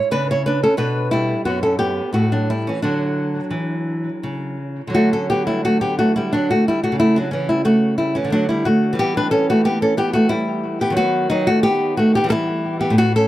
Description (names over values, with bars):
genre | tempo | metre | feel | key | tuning
classical, baroque-style dance for nylon-string guitar | 89 BPM | 3/4 | rubato | D major | A4 = 441 Hz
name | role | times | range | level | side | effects
nylon-string guitar | solo | 0.0-13.3 s | F#2 to C#5 | -16 LUFS | equal | analog delay
room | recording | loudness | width
light reverb | none | -16 LUFS | side -15 dB against mid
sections
0.0-5.0 A section; 5.0-13.3 B section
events
none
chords
0.1 Bm11/C#; 0.8 Bm; 2.2 A5; 2.9 D; 7.0 A/C#; 8.3 D; 9.0 Em; 11.0 B/D#; 12.3 Em